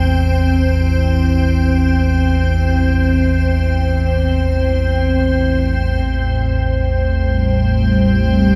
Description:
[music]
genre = dark ambient drone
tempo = free time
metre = none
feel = none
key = unclear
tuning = A4 = 440 Hz
[part]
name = deep rumbling drone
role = drone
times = 0.0-8.6 s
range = A1 to E2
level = -17 LUFS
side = equal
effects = built-in reverb
[part]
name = icy glass pad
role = texture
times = 0.0-8.6 s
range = C4 to C5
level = -21 LUFS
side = equal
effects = chorus, built-in reverb, shimmer reverb
[part]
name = sweeping resonant pad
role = sustained chords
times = 6.0-8.6 s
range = A2 to C4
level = -19 LUFS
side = equal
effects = chorus
[sound]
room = wet plate reverb, RT60 2.9 s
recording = none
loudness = -16 LUFS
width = mono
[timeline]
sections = 0.0-6.0 A section; 6.0-8.6 B section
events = none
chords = 0.0 C/A; 6.0 Am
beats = free time

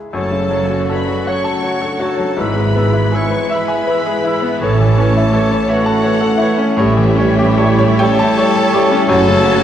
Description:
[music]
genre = classical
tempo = 47-58 BPM (dotted quarters)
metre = 12/8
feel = rubato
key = unclear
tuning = A4 = 440 Hz
[part]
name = bright concert grand piano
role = melody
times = 0.0-9.6 s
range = F#2 to A5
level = -17 LUFS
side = left 2 dB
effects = none
[part]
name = bright clarinet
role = second line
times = 0.1-9.6 s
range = E4 to C#5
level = -24 LUFS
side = left 2 dB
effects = none
[part]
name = warm oboe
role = second line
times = 0.1-9.6 s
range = C#5 to E5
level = -26 LUFS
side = right 2 dB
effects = none
[part]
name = dark bassoon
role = accompaniment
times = 0.1-9.6 s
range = E3 to G3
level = -25 LUFS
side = right 1 dB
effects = none
[part]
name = rich studio viola section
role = accompaniment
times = 0.1-9.6 s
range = E3 to A3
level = -23 LUFS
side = equal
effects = none
[part]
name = dark trumpet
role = stabs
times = 0.1-9.6 s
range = B4 to C#5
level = -25 LUFS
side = right 2 dB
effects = none
[part]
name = rich studio double bass section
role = bass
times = 0.1-9.6 s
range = F#1 to A1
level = -21 LUFS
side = right 3 dB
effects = none
[part]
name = warm tuba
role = bass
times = 0.1-9.6 s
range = F#1 to A1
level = -24 LUFS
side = right 4 dB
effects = none
[part]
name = warm studio violin section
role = melody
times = 0.2-9.6 s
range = E5 to C#6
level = -25 LUFS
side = left 2 dB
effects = none
[part]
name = hollow concert flute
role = second line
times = 0.2-9.6 s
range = G4 to F#5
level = -23 LUFS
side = right 2 dB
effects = none
[part]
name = warm studio violin section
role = second line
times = 0.2-9.6 s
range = G3 to F#4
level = -26 LUFS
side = left 2 dB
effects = none
[part]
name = mellow French horn section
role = sustained chords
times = 0.2-9.6 s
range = F#3 to F#4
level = -22 LUFS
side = left 2 dB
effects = none
[part]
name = warm studio cello section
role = bass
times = 0.2-9.6 s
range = F#2 to A2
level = -21 LUFS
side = right 2 dB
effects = none
[sound]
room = wet concert hall reverb, RT60 1.9 s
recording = dark, warm production, lossy compression artefacts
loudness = -12 LUFS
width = side -10 dB against mid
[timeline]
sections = 0.1-9.6 A section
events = none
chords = 0.1 F#m; 2.4 E/G#; 4.6 A; 6.8 A7; 9.1 F#m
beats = | 0.15 1.28 2.39 3.52 | 4.62 5.70 6.79 8.00 | 9.10

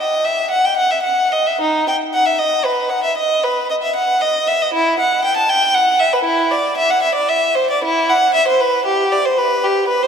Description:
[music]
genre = classical, baroque-style suite movement for unaccompanied violin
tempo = 77 BPM (dotted quarters)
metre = 12/8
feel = rubato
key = E minor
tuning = A4 = 439 Hz
[part]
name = clear violin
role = solo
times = 0.0-10.1 s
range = D#4 to A5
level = -14 LUFS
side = equal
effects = none
[sound]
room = wet cathedral reverb, RT60 5.6 s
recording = minimal, uncompressed stereo recording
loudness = -14 LUFS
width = side -7 dB against mid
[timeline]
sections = 0.0-10.1 A section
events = none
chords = none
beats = 0.00 0.77 | 1.60 2.40 3.17 3.95 | 4.73 5.49 6.26 7.04 | 7.84 8.62 9.38

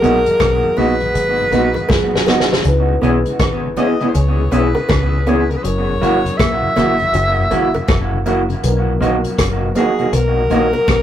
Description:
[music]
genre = lovers rock reggae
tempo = 80 BPM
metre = 4/4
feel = swing 61% on 16ths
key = C# dorian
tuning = A4 = 440 Hz
[part]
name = bright alto saxophone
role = melody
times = 0.0-11.0 s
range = G#4 to E5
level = -18 LUFS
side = left 1 dB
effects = none
[part]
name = mellow tine electric piano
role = accompaniment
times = 0.0-11.0 s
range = F#3 to B4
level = -24 LUFS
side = equal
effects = none
[part]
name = mellow tonewheel organ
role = accompaniment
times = 0.0-10.8 s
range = F#2 to F#4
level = -24 LUFS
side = left 2 dB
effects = slow rotary speaker
[part]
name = electric guitar through a small old amp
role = riff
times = 0.0-11.0 s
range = F#3 to C#4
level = -28 LUFS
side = left 3 dB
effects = none
[part]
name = electric guitar through a small old amp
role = stabs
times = 0.0-10.7 s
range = A#3 to G#4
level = -19 LUFS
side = right 2 dB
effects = dub echo
[part]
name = deep dub fingered electric bass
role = bass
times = 0.0-11.0 s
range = F#1 to C#2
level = -19 LUFS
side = equal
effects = none
[part]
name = vintage brush drum kit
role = drums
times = 0.0-11.0 s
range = hi-hat, kick drum, rim click, snare drum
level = -19 LUFS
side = equal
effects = none
[part]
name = bongos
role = percussion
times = 0.0-11.0 s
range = none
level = -23 LUFS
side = right 1 dB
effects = none
[sound]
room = wet booth ambience, RT60 0.2 s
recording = rough rehearsal-room recording, tube saturation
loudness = -13 LUFS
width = side -10 dB against mid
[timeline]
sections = 0.0-11.0 A section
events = drum fill 1.9-2.6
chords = 0.0 G#m7; 2.6 C#m7; 5.6 F#7; 8.6 Bmaj7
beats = 0.40 1.15 1.90 | 2.65 3.40 4.14 4.89 | 5.64 6.39 7.14 7.89 | 8.64 9.38 10.13 10.88

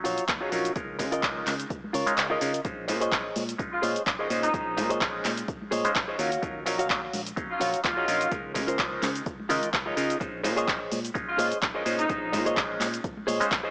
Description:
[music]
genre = filtered disco house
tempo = 127 BPM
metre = 4/4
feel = swing 55% on 16ths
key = Bb minor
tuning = A4 = 439 Hz
[part]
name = clav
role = accompaniment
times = 0.0-13.7 s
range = Gb3 to C6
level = -31 LUFS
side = equal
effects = phaser, vintage 12-bit sampler grit, sidechain pumping, low-pass filter
[part]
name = direct-recorded clean electric guitar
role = riff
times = 0.0-13.7 s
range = F4 to F5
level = -29 LUFS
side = equal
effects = vintage 12-bit sampler grit, sidechain pumping, low-pass filter
[part]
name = fingered electric bass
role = bass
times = 0.0-13.6 s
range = Bb1 to Db3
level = -35 LUFS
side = equal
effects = sidechain pumping, low-pass filter
[part]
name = punchy analog drum machine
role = drums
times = 0.0-13.6 s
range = cabasa, handclaps, hi-hat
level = -29 LUFS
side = equal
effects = sidechain pumping on hats, sidechain pumping on perc
[part]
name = egg shaker and congas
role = percussion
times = 0.1-13.6 s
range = none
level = -39 LUFS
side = equal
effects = sidechain pumping on perc, low-pass filter on perc
[part]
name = electronic kick drum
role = drums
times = 0.3-13.6 s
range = none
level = -36 LUFS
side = equal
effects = none
[part]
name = bright horn section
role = melody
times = 3.7-8.4, 11.3-12.5 s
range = Eb4 to F4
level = -29 LUFS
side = equal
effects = sidechain pumping, low-pass filter
[sound]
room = light reverb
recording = dry, gritty hardware recording, small speaker sound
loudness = -25 LUFS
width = side -30 dB against mid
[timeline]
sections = 0.0-13.7 A section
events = kick drops out 2.2-2.6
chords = 0.0 Ebm9; 0.8 Db69; 2.6 Bbm11; 6.2 Ebm9; 8.3 Db69; 10.2 Bbm11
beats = 0.29 | 0.76 1.23 1.70 2.18 | 2.65 3.12 3.59 4.07 | 4.54 5.01 5.48 5.96 | 6.43 6.90 7.37 7.84 | 8.32 8.79 9.26 9.73 | 10.21 10.68 11.15 11.62 | 12.10 12.57 13.04 13.51

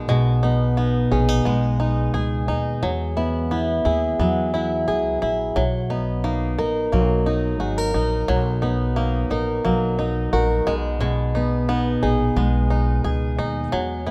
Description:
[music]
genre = pop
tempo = 88 BPM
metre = 4/4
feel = straight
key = unclear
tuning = A4 = 435 Hz
[part]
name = fingerpicked steel-string acoustic guitar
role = accompaniment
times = 0.0-14.1 s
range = B2 to A#4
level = -24 LUFS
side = equal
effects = none
[part]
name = bluegrass banjo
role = arpeggios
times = 0.0-14.1 s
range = F#3 to G#4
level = -30 LUFS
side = equal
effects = none
[part]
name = upright bass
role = bass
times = 0.0-14.1 s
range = G#1 to E2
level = -26 LUFS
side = equal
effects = none
[sound]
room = light reverb, small room ambience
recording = rough home demo mix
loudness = -21 LUFS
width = mono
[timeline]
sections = 0.0-14.1 A section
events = none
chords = 0.0 G#m; 2.8 Eadd9; 5.6 Bmaj7; 10.7 G#m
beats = | 0.10 0.78 1.46 2.15 | 2.83 3.51 4.19 4.88 | 5.56 6.24 6.92 7.61 | 8.29 8.97 9.65 10.33 | 11.01 11.69 12.37 13.05 | 13.73

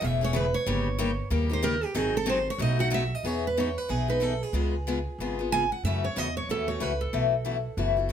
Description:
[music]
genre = acoustic string swing (jazz manouche)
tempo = 186 BPM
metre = 4/4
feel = swing 61% on 8ths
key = E major from 3.2 s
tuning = A4 = 441 Hz
[part]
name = picked steel-string acoustic guitar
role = melody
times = 0.0-8.1 s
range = G4 to G#5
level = -30 LUFS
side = right 4 dB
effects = none
[part]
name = picked steel-string acoustic guitar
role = accompaniment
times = 0.0-8.1 s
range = B2 to G#4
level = -29 LUFS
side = left 5 dB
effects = none
[part]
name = upright bass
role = bass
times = 0.0-8.1 s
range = E1 to F#2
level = -30 LUFS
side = right 1 dB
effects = none
[sound]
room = moderate studio reverb, RT60 0.8 s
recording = none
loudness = -25 LUFS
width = side -9 dB against mid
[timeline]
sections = 0.0-3.2 A section; 3.2-8.1 B section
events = steel-string acoustic guitar solo 0.0-3.2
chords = 0.0 Amaj7; 0.7 D#7/G; 2.0 G#7; 2.6 B7; 3.2 Emaj7; 4.5 C#7; 5.8 F#m7; 7.1 B7sus4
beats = 0.02 0.34 | 0.66 0.99 1.31 1.63 | 1.95 2.28 2.60 2.92 | 3.24 3.57 3.89 4.21 | 4.54 4.86 5.18 5.51 | 5.83 6.15 6.48 6.80 | 7.12 7.45 7.77 8.09

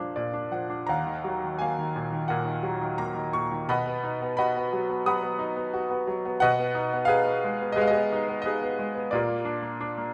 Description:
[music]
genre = classical, lyrical solo piano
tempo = 87 BPM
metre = 4/4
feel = rubato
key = Eb minor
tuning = A4 = 442 Hz
[part]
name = bright concert grand piano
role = solo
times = 0.0-10.1 s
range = Eb2 to D#6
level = -27 LUFS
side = equal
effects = none
[sound]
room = moderate recital hall reverb, RT60 1.6 s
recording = none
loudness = -27 LUFS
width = mono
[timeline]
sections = 0.0-10.1 A section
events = grand piano fill 0.0-0.9, 9.8-10.1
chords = 0.0 Bb; 0.9 Ebmadd9; 3.7 B; 6.4 Abm/Cb; 9.1 Bb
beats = 0.17 | 0.89 1.60 2.30 2.99 | 3.69 4.38 5.07 5.75 | 6.42 7.09 7.77 8.45 | 9.14 9.83

